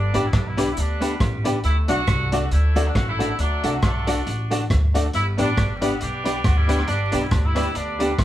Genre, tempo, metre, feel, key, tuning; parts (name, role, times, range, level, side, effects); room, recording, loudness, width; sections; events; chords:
ska; 137 BPM; 4/4; swing 57% on 8ths; G major; A4 = 440 Hz
clear horn section; melody; 0.0-8.2 s; F#3 to A4; -26 LUFS; right 1 dB
upright bass; bass; 0.0-8.2 s; G1 to D2; -22 LUFS; equal
archtop guitar, miked and amplified; accompaniment; 0.1-8.1 s; A3 to G4; -27 LUFS; right 1 dB
honky-tonk upright piano; stabs; 0.1-8.1 s; D4 to D5; -27 LUFS; left 3 dB
crunchy breakbeat drum kit; drums; 0.1-8.2 s; hi-hat, kick drum, rim click; -24 LUFS; equal
moderate studio reverb, RT60 0.9 s; band playing live in one room, vinyl crackle; -19 LUFS; side -13 dB against mid
0.0-8.2 A section
0.0 G; 1.6 D; 5.1 G